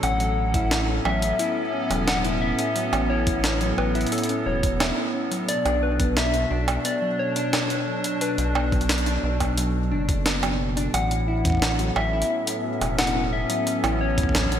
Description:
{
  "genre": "IDM",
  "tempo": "88 BPM",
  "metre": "4/4",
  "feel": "straight",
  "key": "A major",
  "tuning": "A4 = 438 Hz",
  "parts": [
    { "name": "soft struck synth lead", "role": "melody", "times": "0.0-14.6 s", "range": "A4 to F#5", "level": "-28 LUFS", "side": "left 2 dB", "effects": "chorus, cassette tape, ping-pong delay" },
    { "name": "hollow soft pad", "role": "sustained chords", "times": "0.0-14.6 s", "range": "A2 to A4", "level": "-28 LUFS", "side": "right 1 dB", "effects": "chorus" },
    { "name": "harp-like synth pluck", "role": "arpeggios", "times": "0.0-14.5 s", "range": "F#3 to E4", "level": "-30 LUFS", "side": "left 2 dB", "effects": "chorus, cassette tape, digital delay" },
    { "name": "rubbery square bass", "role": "bass", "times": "0.0-14.6 s", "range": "E1 to B1", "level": "-26 LUFS", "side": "equal", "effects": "none" },
    { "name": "jungle sampler-style drum kit", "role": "drums", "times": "0.0-14.6 s", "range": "bongos, hi-hat, snare drum", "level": "-27 LUFS", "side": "right 2 dB", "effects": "overdrive, gated reverb" },
    { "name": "electronic kick drum", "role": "drums", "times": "0.5-14.5 s", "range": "none", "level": "-25 LUFS", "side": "equal", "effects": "overdrive" }
  ],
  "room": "moderate lush hall reverb, RT60 2.7 s",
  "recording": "bright 1980s-style digital production",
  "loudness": "-21 LUFS",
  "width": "side -9 dB against mid",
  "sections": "0.0-14.6 A section",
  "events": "none",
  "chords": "0.0 A6; 5.5 Bm7; 10.9 A6",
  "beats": "| 0.03 0.71 1.39 2.08 | 2.76 3.44 4.12 4.80 | 5.48 6.17 6.85 7.53 | 8.21 8.89 9.57 10.26 | 10.94 11.62 12.30 12.98 | 13.67 14.35"
}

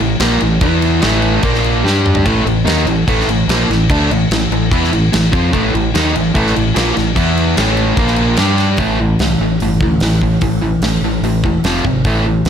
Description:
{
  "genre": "hard rock",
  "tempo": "147 BPM",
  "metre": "4/4",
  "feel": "straight",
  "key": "A minor",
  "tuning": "A4 = 439 Hz",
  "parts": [
    { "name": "overdriven electric guitar", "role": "riff", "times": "0.0-12.5 s", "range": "F2 to G4", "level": "-14 LUFS", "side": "equal", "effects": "none" },
    { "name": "growling fingered electric bass", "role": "bass", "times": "0.0-12.5 s", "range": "E1 to G2", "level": "-18 LUFS", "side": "equal", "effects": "overdrive" },
    { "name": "huge arena drum kit", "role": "drums", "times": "0.2-12.5 s", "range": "crash cymbal, hi-hat, kick drum, snare drum, toms", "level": "-18 LUFS", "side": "equal", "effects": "none" }
  ],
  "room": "light reverb",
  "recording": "none",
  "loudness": "-12 LUFS",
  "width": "side -8 dB against mid",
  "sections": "0.0-8.8 A section; 8.8-12.5 B section",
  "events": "drum fill 1.8-2.3",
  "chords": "0.0 A5; 0.6 E5; 1.0 A5; 1.4 Bb5; 1.8 G5; 2.3 A5; 7.2 E5; 7.6 A5; 8.0 Bb5; 8.4 G5; 8.8 A5; 11.6 F5",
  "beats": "0.20 | 0.62 1.03 1.44 1.85 | 2.26 2.67 3.08 3.49 | 3.90 4.30 4.71 5.12 | 5.53 5.93 6.34 6.75 | 7.16 7.56 7.97 8.38 | 8.79 9.19 9.60 10.01 | 10.42 10.82 11.23 11.64 | 12.05 12.46"
}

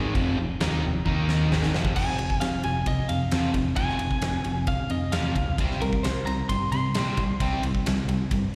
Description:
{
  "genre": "hard rock",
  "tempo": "132 BPM",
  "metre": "4/4",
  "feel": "straight",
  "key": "F harmonic minor",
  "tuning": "A4 = 440 Hz",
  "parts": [
    { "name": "crunchy overdriven guitar", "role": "riff", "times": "0.0-8.5 s", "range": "F2 to Eb4", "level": "-30 LUFS", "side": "equal", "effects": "slapback echo" },
    { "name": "fingered electric bass", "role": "bass", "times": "0.0-8.5 s", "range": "E1 to C3", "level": "-31 LUFS", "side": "equal", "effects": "none" },
    { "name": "huge arena drum kit", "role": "drums", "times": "0.2-8.4 s", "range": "crash cymbal, kick drum, ride cymbal, snare drum", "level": "-31 LUFS", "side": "equal", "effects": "none" },
    { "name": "lightly driven lead guitar", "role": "melody", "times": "2.0-8.0 s", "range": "Bb4 to C6", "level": "-33 LUFS", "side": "equal", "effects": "plate reverb, slapback echo, analog delay" }
  ],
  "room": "light reverb",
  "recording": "live gig heard through the venue's PA, recital hall reverb",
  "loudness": "-25 LUFS",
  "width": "mono",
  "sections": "0.0-2.0 A section; 2.0-8.6 B section",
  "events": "drum fill 1.1-2.0; lead electric guitar solo 2.0-8.6",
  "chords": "0.0 Fm; 1.1 Eb5; 1.5 Fm; 5.6 C5",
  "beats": "| 0.15 0.60 1.06 1.51 | 1.96 2.42 2.87 3.32 | 3.78 4.23 4.68 5.14 | 5.59 6.04 6.50 6.95 | 7.41 7.86 8.31"
}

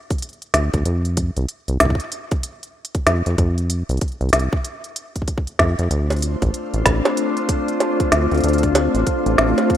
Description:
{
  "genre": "IDM",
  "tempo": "95 BPM",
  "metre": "4/4",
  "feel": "swing 62% on 16ths",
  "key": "unclear",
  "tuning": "A4 = 440 Hz",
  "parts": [
    { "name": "electronic kick drum", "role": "drums", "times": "0.1-9.8 s", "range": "none", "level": "-22 LUFS", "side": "equal", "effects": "studio reverb" },
    { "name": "organic electronic drum kit", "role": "drums", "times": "0.1-9.8 s", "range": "bongos, hi-hat, snare drum", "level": "-21 LUFS", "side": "right 1 dB", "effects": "studio reverb" },
    { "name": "deep acid bass", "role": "bass", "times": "0.5-9.5 s", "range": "A1 to F2", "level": "-19 LUFS", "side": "equal", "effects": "tube saturation" },
    { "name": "glassy FM pad", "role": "sustained chords", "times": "6.1-9.8 s", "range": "A3 to C5", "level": "-20 LUFS", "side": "left 2 dB", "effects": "ensemble chorus, built-in reverb" }
  ],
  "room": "moderate lush hall reverb, RT60 2.1 s",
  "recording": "rough home demo mix",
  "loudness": "-17 LUFS",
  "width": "side -10 dB against mid",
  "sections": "0.0-9.8 A section",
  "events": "none",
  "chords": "0.0 D5; 0.9 F5; 5.9 Dm7",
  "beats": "0.23 | 0.86 1.49 2.12 2.75 | 3.38 4.01 4.65 5.28 | 5.91 6.54 7.17 7.80 | 8.44 9.07 9.70"
}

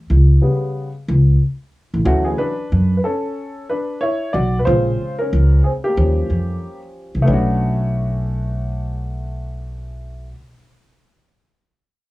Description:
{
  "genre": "hip hop",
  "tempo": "92 BPM",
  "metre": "4/4",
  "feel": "swing 60% on 16ths",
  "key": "unclear",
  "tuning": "A4 = 439 Hz",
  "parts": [
    { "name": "upright bass", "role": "bass", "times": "0.1-10.3 s", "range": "A1 to F#2", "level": "-16 LUFS", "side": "equal", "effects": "none" },
    { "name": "warm upright piano", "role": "accompaniment", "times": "0.4-10.4 s", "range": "C#3 to D5", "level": "-21 LUFS", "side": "equal", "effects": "cassette tape" }
  ],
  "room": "little or no reverb",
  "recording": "home recording on cassette",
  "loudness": "-16 LUFS",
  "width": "side -18 dB against mid",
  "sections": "0.0-7.3 A section; 7.3-9.9 B section",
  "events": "upright piano solo 0.0-7.3",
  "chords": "0.0 A7 (rootless); 2.1 Dmaj9; 4.7 A#m7; 6.0 D#9; 7.3 Bm7",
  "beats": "0.10 0.75 1.40 | 2.05 2.71 3.36 4.01 | 4.66 5.32 5.97 6.62 | 7.27 7.92 8.58 9.23"
}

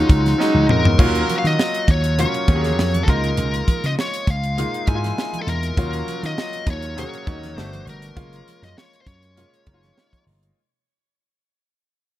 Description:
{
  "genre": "polished 1980s jazz-funk pop",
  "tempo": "100 BPM",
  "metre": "4/4",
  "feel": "swing 54% on 16ths",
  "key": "Eb minor",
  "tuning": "A4 = 441 Hz",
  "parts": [
    { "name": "high-gain lead guitar", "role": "melody", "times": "0.0-10.2 s", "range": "Eb4 to Ab5", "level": "-24 LUFS", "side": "left 2 dB", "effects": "distortion" },
    { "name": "bright grand piano", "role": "accompaniment", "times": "0.0-10.6 s", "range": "Gb3 to Ab4", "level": "-25 LUFS", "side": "equal", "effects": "wide subtle chorus" },
    { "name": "vintage slap bass", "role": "bass", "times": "0.0-10.5 s", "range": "Gb1 to Eb3", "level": "-21 LUFS", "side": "equal", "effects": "none" },
    { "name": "tight funk drum kit", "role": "drums", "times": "0.1-10.6 s", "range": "crash cymbal, hi-hat, kick drum, snare drum, toms", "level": "-19 LUFS", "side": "equal", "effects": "none" },
    { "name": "congas", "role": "percussion", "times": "0.3-10.4 s", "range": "none", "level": "-33 LUFS", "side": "right 3 dB", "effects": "none" }
  ],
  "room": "small room ambience",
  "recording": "none",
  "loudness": "-17 LUFS",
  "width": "side -14 dB against mid",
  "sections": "1.0-10.6 A section",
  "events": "drum fill 0.4-1.0; fade-out 1.0-10.6",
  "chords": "0.0 Ebm11; 1.0 Ebm9; 3.1 Db6; 5.8 Ebm9; 7.6 Gmaj7; 8.2 Gbmaj7",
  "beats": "0.39 | 0.99 1.58 2.18 2.78 | 3.38 3.97 4.57 5.17 | 5.77 6.37 6.97 7.57 | 8.16 8.76 9.36 9.96"
}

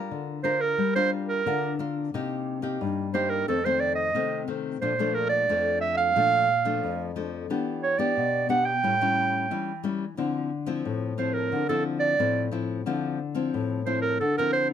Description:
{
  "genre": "samba",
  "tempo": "90 BPM",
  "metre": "4/4",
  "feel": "straight",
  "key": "D minor",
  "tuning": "A4 = 440 Hz",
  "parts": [
    { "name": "nylon-string guitar", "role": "accompaniment", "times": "0.0-14.7 s", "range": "F2 to Bb4", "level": "-28 LUFS", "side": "left 5 dB", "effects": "none" },
    { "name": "warm clarinet", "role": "melody", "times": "0.4-14.7 s", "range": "A4 to G5", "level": "-24 LUFS", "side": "right 5 dB", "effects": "none" }
  ],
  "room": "light reverb",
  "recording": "close, detailed microphones",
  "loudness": "-24 LUFS",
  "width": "side -9 dB against mid",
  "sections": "0.0-14.7 A section",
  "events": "none",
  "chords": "0.0 Gm7; 2.1 Cm7; 3.5 F7; 4.8 Bbmaj7; 7.5 Em7; 8.8 A7; 10.2 Dm9",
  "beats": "0.11 0.79 1.46 | 2.13 2.80 3.48 4.15 | 4.82 5.49 6.16 6.83 | 7.50 8.17 8.84 9.51 | 10.18 10.85 11.52 12.19 | 12.87 13.54 14.21"
}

